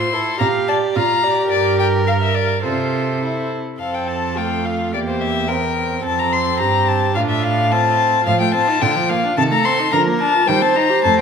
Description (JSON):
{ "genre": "quick classical-period movement for string quartet", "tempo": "108 BPM", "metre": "2/4", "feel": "straight", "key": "F major", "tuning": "A4 = 439 Hz", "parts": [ { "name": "rich violin", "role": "melody", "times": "0.0-11.2 s", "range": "C5 to C6", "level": "-18 LUFS", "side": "left 5 dB", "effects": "none" }, { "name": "warm violin", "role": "second line", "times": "0.0-11.2 s", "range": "E4 to F5", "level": "-23 LUFS", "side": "left 1 dB", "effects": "none" }, { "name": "warm viola", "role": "accompaniment", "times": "0.0-11.2 s", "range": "D3 to Bb4", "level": "-22 LUFS", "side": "right 4 dB", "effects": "none" }, { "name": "rich cello", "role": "bass", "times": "0.0-11.2 s", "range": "E2 to Eb3", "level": "-23 LUFS", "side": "right 4 dB", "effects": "none" } ], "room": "moderate scoring stage reverb, RT60 1.7 s", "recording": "minimal, uncompressed stereo recording", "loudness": "-15 LUFS", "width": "side -6 dB against mid", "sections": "0.0-3.8 A section; 3.8-11.2 B section", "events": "none", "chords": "0.4 Bb; 1.5 Gm; 2.6 F/C; 3.8 F; 4.9 C7/E; 6.1 F; 7.2 F/A; 8.3 F7/A; 8.8 Bb; 9.4 Adim/C; 9.9 Bb/D; 10.5 Cm/Eb" }